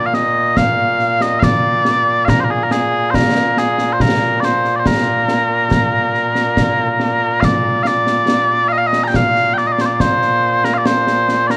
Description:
scottish traditional, Scottish pipe music; 70 BPM; 3/4; straight; Bb mixolydian; A4 = 440 Hz
mellow small bagpipes; melody; 0.0-11.6 s; Bb2 to Bb5; -16 LUFS; equal
concert snare drum and concert bass drum; drums; 0.1-11.6 s; -21 LUFS; equal
light reverb; worn, warbling old tape, cassette tape, warbly pitch drift; -15 LUFS; mono
0.0-7.4 A section; 7.4-11.6 B section
0.57 1.43 | 2.29 3.14 4.00 | 4.86 5.71 6.57 | 7.43 8.29 9.14 | 10.00 10.86

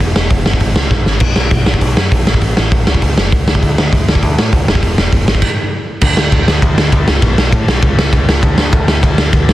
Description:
punk rock; 200 BPM; 4/4; straight; A4 = 439 Hz
growling picked electric bass; bass; 0.0-9.5 s; E1 to A2; -15 LUFS; equal; overdrive
raw garage drum kit; drums; 0.0-9.5 s; crash cymbal, hi-hat, kick drum, ride cymbal, snare drum; -11 LUFS; equal
little or no reverb; dense, heavily limited modern master; -10 LUFS; side -15 dB against mid
0.0-6.0 A section; 6.0-9.5 B section
drum fill 0.9-1.2; stop 5.4-6.0
| 0.01 0.31 0.61 0.91 | 1.22 1.52 1.82 2.12 | 2.42 2.72 3.02 3.32 | 3.62 3.92 4.22 4.53 | 4.83 5.13 5.43 5.73 | 6.03 6.33 6.63 6.93 | 7.22 7.53 7.83 8.12 | 8.43 8.72 9.03 9.32

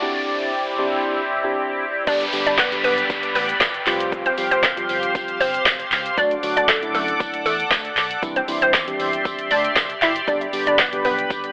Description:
dance-pop; 117 BPM; 4/4; straight; C major; A4 = 440 Hz
mellow tine electric piano; accompaniment; 0.0-11.5 s; D3 to G4; -27 LUFS; equal; medium stereo tremolo, sidechain pumping
sweeping resonant pad; sustained chords; 0.0-11.5 s; C4 to D6; -23 LUFS; equal; chorus, sidechain pumping
riser and downlifter; sound effects; 0.0-6.2 s; -28 LUFS; equal
hollow square pluck; melody; 2.1-11.1 s; A3 to E5; -21 LUFS; equal; chorus, tape echo
vintage muted fingered electric bass; bass; 2.1-11.2 s; F1 to F#2; -39 LUFS; equal; sidechain pumping
deep house drum kit; drums; 2.1-11.5 s; crash cymbal, handclaps, hi-hat, kick drum, shaker, snare drum; -21 LUFS; equal
tambourine; percussion; 2.1-11.4 s; -36 LUFS; left 1 dB
light reverb; high-pass filter, telephone sound; -17 LUFS; side -29 dB against mid
0.0-2.1 A section; 2.1-11.5 B section
build-up 0.0-2.1; riser 0.0-2.1; break 0.0-2.1; drop 2.1-11.5
0.0 Cadd9; 2.1 G; 3.9 Fsus2; 6.2 D; 8.2 Cadd9; 10.3 G
| 0.02 0.53 1.05 1.56 | 2.07 2.58 3.10 3.61 | 4.12 4.64 5.15 5.66 | 6.17 6.69 7.20 7.71 | 8.23 8.74 9.25 9.77 | 10.28 10.79 11.30

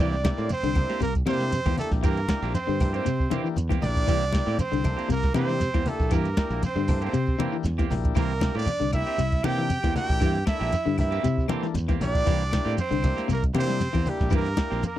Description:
afrobeat; 117 BPM; 4/4; swing 54% on 16ths; C mixolydian; A4 = 439 Hz
bright trumpet; melody; 0.0-15.0 s; G4 to G5; -30 LUFS; right 3 dB
growling tenor saxophone; second line; 0.0-15.0 s; G3 to G4; -35 LUFS; right 6 dB
electric guitar at the edge of break-up; arpeggios; 0.0-15.0 s; C3 to G3; -29 LUFS; left 8 dB
semi-hollow electric guitar; stabs; 0.0-14.9 s; E3 to G4; -33 LUFS; right 9 dB
modern bright fingered electric bass; bass; 0.0-14.8 s; Bb1 to C3; -28 LUFS; equal
claves; percussion; 0.0-14.7 s; -45 LUFS; left 16 dB
shekere; percussion; 0.0-15.0 s; -31 LUFS; right 2 dB
soft vintage rhythm box; drums; 0.1-15.0 s; hi-hat, kick drum, snare drum; -26 LUFS; equal
combo organ; accompaniment; 0.2-14.8 s; Bb3 to A4; -34 LUFS; left 9 dB
congas; percussion; 0.2-15.0 s; -31 LUFS; left 2 dB
little or no reverb; dry, close 1970s-style studio recording; -22 LUFS; side -13 dB against mid
0.0-15.0 A section
0.0 C7
0.50 1.01 1.52 | 2.03 2.54 3.06 3.57 | 4.08 4.59 5.10 5.61 | 6.12 6.63 7.14 7.66 | 8.17 8.68 9.19 9.70 | 10.21 10.73 11.24 11.75 | 12.27 12.78 13.29 13.80 | 14.32 14.83

